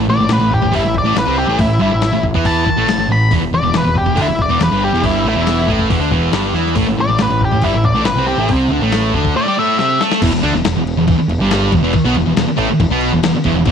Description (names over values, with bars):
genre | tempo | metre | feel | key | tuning
garage rock duo or trio | 139 BPM | 4/4 | straight | unclear | A4 = 440 Hz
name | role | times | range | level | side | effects
thick fuzz guitar | riff | 0.0-13.7 s | E2 to A4 | -15 LUFS | right 1 dB | distortion
growling picked electric bass | bass | 0.0-13.7 s | E1 to E2 | -20 LUFS | right 1 dB | overdrive
octave-fuzz lead guitar | melody | 0.1-10.0 s | E4 to B5 | -17 LUFS | left 2 dB | distortion
dusty soul sampler-style drum kit | drums | 0.3-13.7 s | crash cymbal, hi-hat, kick drum, snare drum | -20 LUFS | left 3 dB | none
room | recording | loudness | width
light reverb, digital ambience | 1960s-style stereo | -12 LUFS | side -7 dB against mid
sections
0.0-10.2 A section; 10.2-13.7 B section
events
drum fill 9.8-10.2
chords
0.0 A5; 3.3 Em7; 6.8 Gsus2; 10.2 E5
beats
0.30 0.73 1.16 | 1.59 2.02 2.45 2.88 | 3.31 3.74 4.17 4.60 | 5.03 5.46 5.89 6.33 | 6.76 7.19 7.62 8.06 | 8.49 8.92 9.35 9.78 | 10.21 10.65 11.08 11.51 | 11.94 12.37 12.79 13.22 | 13.65